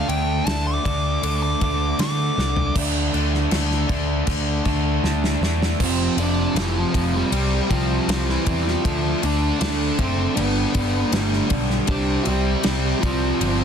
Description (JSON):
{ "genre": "quiet-loud alternative rock", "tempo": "79 BPM", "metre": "4/4", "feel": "straight", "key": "D dorian", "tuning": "A4 = 439 Hz", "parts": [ { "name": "dark smooth lead guitar", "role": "melody", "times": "0.0-13.6 s", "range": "E3 to D6", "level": "-25 LUFS", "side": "equal", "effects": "overdrive, slapback echo" }, { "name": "distorted electric guitar", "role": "riff", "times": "0.0-13.6 s", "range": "F2 to D4", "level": "-23 LUFS", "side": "right 1 dB", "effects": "distortion" }, { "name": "overdriven picked electric bass", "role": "bass", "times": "0.1-13.6 s", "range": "F1 to D3", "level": "-24 LUFS", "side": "equal", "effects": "none" }, { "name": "loose indie drum kit", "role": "drums", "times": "0.1-13.6 s", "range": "crash cymbal, kick drum, ride cymbal, snare drum, toms", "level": "-26 LUFS", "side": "left 1 dB", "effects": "soft clipping on kick" } ], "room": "studio reverb", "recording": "dense, heavily limited modern master", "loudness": "-19 LUFS", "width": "side -7 dB against mid", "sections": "0.0-2.8 A section; 2.8-5.8 B section; 5.8-13.6 C section", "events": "lead electric guitar solo 0.0-2.8; drum fill 2.4-2.8, 5.0-5.8", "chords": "0.0 D5; 5.8 F5; 7.3 C5; 8.8 Dm7; 10.4 G; 11.9 Csus2" }